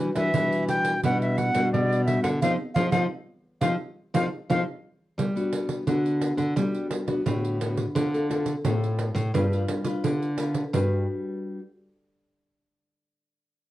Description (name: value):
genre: samba and choro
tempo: 87 BPM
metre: 4/4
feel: straight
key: G major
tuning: A4 = 440 Hz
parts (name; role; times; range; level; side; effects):
- nylon-string guitar; accompaniment; 0.0-11.6 s; A2 to B4; -29 LUFS; left 2 dB; none
- nylon-string guitar; bass; 0.0-11.1 s; G2 to G3; -27 LUFS; equal; none
- silver concert flute; melody; 0.2-4.6 s; D5 to G5; -26 LUFS; equal; none
- pandeiro; percussion; 0.2-10.9 s; none; -30 LUFS; right 3 dB; none
room: moderate studio reverb, RT60 0.6 s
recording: worn, warbling old tape, cassette tape, warbly pitch drift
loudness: -23 LUFS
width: side -15 dB against mid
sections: 0.0-5.2 A section; 5.2-10.7 B section; 10.7-13.5 C section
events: band accent 2.4-5.2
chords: 0.0 Em9; 2.4 F5; 5.2 Gmaj7; 8.0 Dm7; 9.3 G7; 10.7 Gmaj7